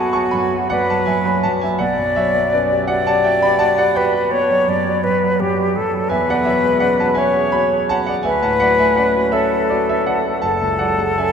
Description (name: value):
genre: classical, impressionist duo for flute and grand piano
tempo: 55 BPM (dotted quarters)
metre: 12/8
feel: rubato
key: unclear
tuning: A4 = 440 Hz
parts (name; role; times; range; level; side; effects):
- silver concert flute; melody; 0.0-11.3 s; F#4 to D5; -17 LUFS; left 2 dB; none
- warm concert grand piano; accompaniment; 0.0-11.3 s; F#1 to D6; -18 LUFS; right 2 dB; none
room: wet cathedral reverb, RT60 5.6 s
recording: in a vast, echoing space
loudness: -14 LUFS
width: side -7 dB against mid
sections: 0.0-11.3 A section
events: none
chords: 0.0 Bm7; 1.8 Gmaj7#11/B; 6.1 E69; 8.3 Dmaj7; 10.4 F#m9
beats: 0.71 | 1.79 2.89 3.96 5.05 | 6.12 7.18 8.26 9.34 | 10.43